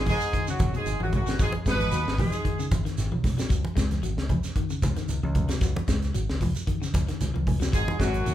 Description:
afrobeat; 113 BPM; 4/4; swing 54% on 16ths; G# dorian; A4 = 441 Hz
clear horn section; melody; 0.0-2.7, 7.7-8.3 s; F#4 to B4; -30 LUFS; equal
clear trombone section; second line; 0.0-2.7, 7.7-8.3 s; F#2 to B2; -37 LUFS; equal
raspy tenor saxophone; second line; 0.0-2.7, 7.7-8.3 s; F#3 to B3; -37 LUFS; right 3 dB
electric guitar at the edge of break-up; arpeggios; 0.0-8.3 s; B2 to G#3; -34 LUFS; left 3 dB
fingered electric bass; bass; 0.0-8.3 s; G#1 to D#2; -29 LUFS; equal
tight funk drum kit; drums; 0.1-8.3 s; hi-hat, kick drum, snare drum; -28 LUFS; equal
congas; percussion; 0.1-8.0 s; -31 LUFS; right 1 dB
shekere; percussion; 0.1-8.3 s; -36 LUFS; right 3 dB
moderate large studio reverb, RT60 0.9 s; band playing live in one room; -24 LUFS; side -12 dB against mid
0.0-8.3 A section
0.0 G#m7; 3.5 G#7(no3)
0.33 0.86 | 1.39 1.92 2.44 2.97 | 3.50 4.03 4.56 5.09 | 5.62 6.15 6.68 7.21 | 7.73 8.26

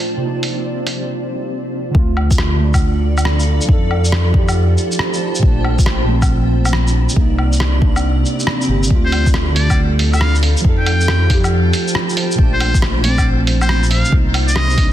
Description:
future garage; 138 BPM; 4/4; swing 66% on 16ths; A4 = 440 Hz
muted felt-like synth keys; accompaniment; 0.0-14.9 s; Bb2 to A4; -21 LUFS; right 4 dB; chorus, sidechain pumping, tape echo
granular cloud pad; sustained chords; 0.0-14.9 s; C4 to A5; -24 LUFS; equal; built-in reverb, vintage 12-bit sampler grit, sidechain pumping
flickering grainy texture; texture; 0.0-1.1 s; D4 to D5; -40 LUFS; left 1 dB
lo-fi sampler-style drum kit; drums; 0.4-14.9 s; hi-hat, rim click, shaker, woodblock; -21 LUFS; equal; soft clipping on snare
dark detuned saw bass; bass; 1.9-14.9 s; G1 to F2; -16 LUFS; equal; sidechain pumping
electronic kick drum; drums; 1.9-14.9 s; -14 LUFS; equal
trumpet with metal mute; melody; 9.1-14.9 s; C5 to G5; -22 LUFS; left 1 dB; digital delay
digital ambience; dense, heavily limited modern master; -13 LUFS; side -12 dB against mid
0.0-2.0 A section; 2.0-14.9 B section
break 1.1-2.0
0.2 Cm7; 2.0 Dm; 3.7 F7; 5.4 Bbmaj7; 7.2 Cm7; 8.9 Dm; 10.6 F7; 12.4 Bbmaj7; 14.1 Cm7
| 0.21 0.65 1.08 1.52 | 1.95 2.39 2.82 3.25 | 3.69 4.12 4.56 4.99 | 5.43 5.86 6.30 6.73 | 7.17 7.60 8.04 8.47 | 8.91 9.34 9.78 10.21 | 10.65 11.08 11.52 11.95 | 12.39 12.82 13.26 13.69 | 14.12 14.56

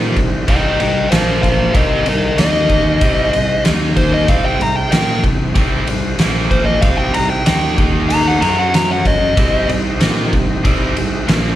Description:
blues rock power trio and southern rock; 94 BPM; 4/4; straight; C minor; A4 = 435 Hz
overdriven tonewheel organ; sustained chords; 0.0-11.6 s; G3 to F5; -29 LUFS; right 2 dB
cranked stack guitar; riff; 0.0-11.6 s; Bb2 to Bb4; -20 LUFS; right 1 dB; overdrive
fuzz fingered electric bass; bass; 0.0-11.6 s; Bb1 to Bb2; -20 LUFS; equal; overdrive
oversized low-tuned drum kit; drums; 0.2-11.4 s; kick drum, ride cymbal, snare drum; -16 LUFS; equal
fuzz lead guitar; melody; 0.5-9.7 s; Bb4 to Bb5; -17 LUFS; left 1 dB; distortion, slapback echo
light reverb; live gig heard through the venue's PA, club reverb; -12 LUFS; side -13 dB against mid
0.0-11.6 A section
lead electric guitar solo 0.0-11.6
0.0 Cm; 1.1 Bb5; 1.8 Cm; 2.4 Eb5; 3.0 Cm; 3.7 Eb5; 4.3 Cm; 6.2 Bb5; 6.8 Cm; 7.8 Eb5; 8.4 F#5; 9.4 Cm
0.49 1.12 | 1.76 2.39 3.02 3.65 | 4.29 4.92 5.55 6.19 | 6.83 7.46 8.10 8.73 | 9.37 10.01 10.65 11.29

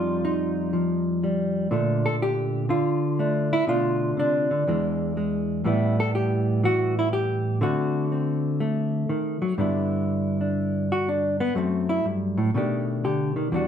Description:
solo jazz; 122 BPM; 4/4; swing 66% on 8ths; G major; A4 = 440 Hz
hollow-body jazz guitar; solo; 0.0-13.7 s; E2 to A4; -22 LUFS; equal
wet studio reverb, RT60 0.7 s; band playing live in one room; -22 LUFS; side -8 dB against mid
0.0-9.6 A section; 9.6-13.7 B section
hollow-body jazz guitar solo 9.6-13.7
0.0 Fsus2; 1.7 Bbmaj7; 3.7 Bm7b5; 4.7 E7; 5.6 Asus2; 7.6 D7b9; 9.6 G6; 11.6 F#m7b5; 12.5 B7alt
0.23 0.72 1.21 | 1.71 2.20 2.69 3.18 | 3.67 4.17 4.66 5.15 | 5.64 6.13 6.63 7.12 | 7.61 8.10 8.60 9.09 | 9.58 10.07 10.57 11.06 | 11.55 12.04 12.54 13.03 | 13.53

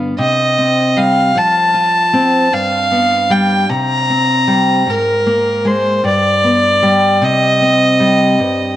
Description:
acoustic folk duo or small band; 51 BPM (dotted quarters); 6/8; straight; C minor; A4 = 441 Hz
fingerpicked steel-string acoustic guitar; accompaniment; 0.0-8.8 s; G2 to B4; -15 LUFS; left 1 dB
rich fiddle; melody; 0.2-8.8 s; Bb4 to Bb5; -13 LUFS; equal
wet spring reverb, RT60 2.4 s; cassette tape; -10 LUFS; side -13 dB against mid
0.0-8.8 A section
0.2 Cm; 1.4 F; 2.5 G; 3.7 C5; 4.9 Absus2; 6.0 G; 7.2 Cm
| 0.18 1.35 | 2.52 3.69 | 4.87 6.04 | 7.21 8.39

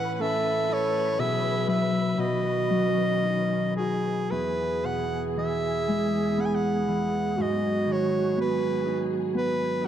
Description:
celtic folk, Celtic slow air; 56-62 BPM; 3/4; rubato; E major; A4 = 440 Hz
breathy soprano saxophone; melody; 0.0-9.9 s; G#4 to G#5; -28 LUFS; equal
mellow hollow wooden flute; second line; 0.0-9.9 s; F#4 to B4; -29 LUFS; right 8 dB
Celtic harp; accompaniment; 0.0-9.9 s; E2 to F#4; -28 LUFS; left 3 dB
muted symphonic string section; sustained chords; 0.0-9.9 s; D#3 to B4; -36 LUFS; left 2 dB
wet concert hall reverb, RT60 1.8 s; dark, warm production; -23 LUFS; side -10 dB against mid
0.0-4.3 A section; 4.3-9.9 B section
0.0 Aadd9; 1.2 Bsus4; 2.2 Badd9; 4.3 E; 7.4 G#m7
0.21 | 1.19 2.19 3.23 | 4.29 5.34 6.36 | 7.36 8.35 9.33

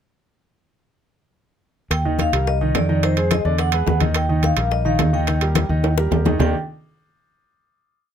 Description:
Afro-Cuban jazz; 214 BPM; 4/4; straight; Eb major; A4 = 440 Hz
vibraphone with medium mallets; melody; 1.9-6.5 s; C5 to G5; -25 LUFS; left 2 dB
modern bright fingered electric bass; bass; 1.9-6.5 s; Bb1 to F2; -20 LUFS; equal
bongos; percussion; 1.9-6.5 s; -28 LUFS; left 9 dB
congas; percussion; 1.9-6.5 s; -26 LUFS; left 3 dB
timbales; percussion; 1.9-6.5 s; -26 LUFS; right 8 dB
warm grand piano; accompaniment; 2.1-6.5 s; D3 to Eb5; -23 LUFS; right 2 dB
little or no reverb; close, detailed microphones; -17 LUFS; side -9 dB against mid
1.9-6.4 A section; 6.4-7.5 final chord
drum fill 5.8-6.4
1.9 Ebadd9; 2.5 Cm11; 3.0 Fm7; 3.6 E9; 4.2 Ebadd9; 6.4 Ebmaj9
| 1.91 2.19 2.47 2.75 | 3.03 3.31 3.59 3.87 | 4.15 4.43 4.71 4.99 | 5.28 5.56 5.84 6.12 | 6.40

